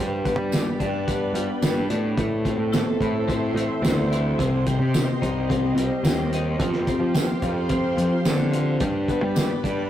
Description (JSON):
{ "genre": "psychedelic rock", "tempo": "109 BPM", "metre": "4/4", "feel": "straight", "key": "unclear", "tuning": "A4 = 439 Hz", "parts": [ { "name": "soft string machine", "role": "sustained chords", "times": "0.0-9.9 s", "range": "G4 to C6", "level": "-30 LUFS", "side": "right 1 dB", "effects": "ensemble chorus" }, { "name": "twelve-string electric guitar", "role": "riff", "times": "0.0-9.9 s", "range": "G2 to A4", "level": "-26 LUFS", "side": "left 3 dB", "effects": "phaser" }, { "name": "fuzz picked electric bass", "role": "bass", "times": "0.0-9.9 s", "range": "C2 to G3", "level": "-25 LUFS", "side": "right 1 dB", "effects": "overdrive" }, { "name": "cloth-damped thuddy drum kit", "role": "drums", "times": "0.3-9.8 s", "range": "hi-hat, kick drum, snare drum", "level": "-26 LUFS", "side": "equal", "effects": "none" }, { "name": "tambourine", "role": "percussion", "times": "0.5-9.5 s", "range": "none", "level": "-39 LUFS", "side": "right 3 dB", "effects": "none" } ], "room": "moderate stone room reverb, RT60 1.1 s", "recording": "rough rehearsal-room recording, tube saturation", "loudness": "-20 LUFS", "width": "side -11 dB against mid", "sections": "0.0-9.9 A section", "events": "none", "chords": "0.0 G; 2.2 Am; 4.4 Cm; 6.6 Fsus2; 8.8 G" }